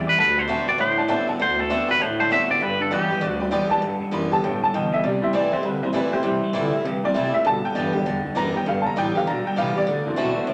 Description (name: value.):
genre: rock.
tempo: 198 BPM.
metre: 4/4.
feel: swing 62% on 8ths.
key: G major.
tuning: A4 = 440 Hz.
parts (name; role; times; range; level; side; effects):
picked swing-style acoustic guitar; accompaniment; 0.0-10.5 s; G2 to G4; -29 LUFS; equal; none.
electric guitar through a small old amp; riff; 0.0-10.5 s; G2 to B3; -30 LUFS; equal; phaser.
dark bass clarinet; bass; 0.0-10.5 s; D2 to E3; -33 LUFS; equal; none.
twangy electric guitar; melody; 0.1-3.4 s; G4 to E5; -23 LUFS; equal; spring reverb.
bright upright piano; accompaniment; 0.1-10.5 s; D3 to D6; -27 LUFS; equal; none.
room: wet large studio reverb, RT60 1.2 s.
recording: none.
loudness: -22 LUFS.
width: mono.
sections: 0.0-3.8 A section; 3.8-10.5 B section.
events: upright piano solo 3.8-10.5.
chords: 0.2 D7; 2.6 G; 5.0 C; 7.5 G; 9.9 D7.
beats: | 0.19 0.49 0.80 1.10 | 1.40 1.70 2.00 2.31 | 2.61 2.91 3.21 3.52 | 3.82 4.12 4.42 4.73 | 5.03 5.33 5.64 5.94 | 6.24 6.54 6.85 7.15 | 7.45 7.75 8.06 8.36 | 8.66 8.97 9.27 9.57 | 9.88 10.18 10.48.